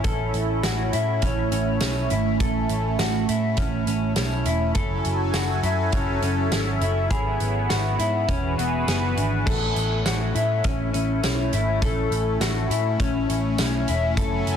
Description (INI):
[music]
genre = dream pop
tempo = 102 BPM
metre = 4/4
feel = straight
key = A major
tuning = A4 = 440 Hz
[part]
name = phased analog pad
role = sustained chords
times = 0.0-14.6 s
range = E3 to G#5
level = -27 LUFS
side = right 2 dB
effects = phaser, chorus
[part]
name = mellow electric guitar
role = arpeggios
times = 0.0-14.6 s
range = B3 to A4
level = -27 LUFS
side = left 4 dB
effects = lush chorus, ping-pong delay
[part]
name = vintage muted picked electric bass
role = bass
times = 0.0-14.6 s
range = E1 to A2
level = -26 LUFS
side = equal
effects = none
[part]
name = loose indie drum kit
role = drums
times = 0.0-14.6 s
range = crash cymbal, hi-hat, kick drum, snare drum, tambourine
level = -27 LUFS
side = equal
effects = none
[part]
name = glockenspiel with rubber mallets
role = texture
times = 0.6-8.5 s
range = G#5 to B5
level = -39 LUFS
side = right 2 dB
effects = none
[sound]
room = light reverb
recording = dense, heavily limited modern master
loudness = -21 LUFS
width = side -8 dB against mid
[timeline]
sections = 0.0-9.5 A section; 9.5-14.6 A section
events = none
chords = 0.1 A; 4.8 F#m7; 7.1 C#m7/G#; 8.3 Eadd9; 9.5 A